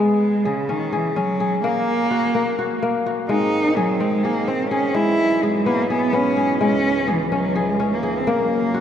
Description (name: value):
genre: contemporary instrumental, chamber music in an uneven meter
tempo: 253 BPM (eighths)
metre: 7/8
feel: straight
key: unclear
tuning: A4 = 440 Hz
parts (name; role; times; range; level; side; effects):
- rich cello; melody; 0.0-8.8 s; Db3 to E4; -21 LUFS; right 2 dB; none
- kora; arpeggios; 0.0-8.8 s; Ab3 to Ab4; -21 LUFS; left 2 dB; none
- pedal harmonium; sustained chords; 3.3-8.8 s; Db2 to C4; -26 LUFS; equal; none
room: wet cathedral reverb, RT60 6.1 s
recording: in a vast, echoing space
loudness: -18 LUFS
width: side -9 dB against mid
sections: 0.0-8.8 A section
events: none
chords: 0.0 Db5; 1.6 Gb; 3.3 Ab; 5.0 Eadd9; 6.6 Dbm; 8.3 Gb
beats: 0.21 0.45 0.69 0.92 1.16 1.40 | 1.63 1.87 2.11 2.35 2.58 2.82 3.06 | 3.29 3.53 3.77 4.00 4.24 4.48 4.72 | 4.95 5.19 5.43 5.66 5.90 6.14 6.38 | 6.61 6.85 7.09 7.32 7.56 7.80 8.03 | 8.27 8.51 8.74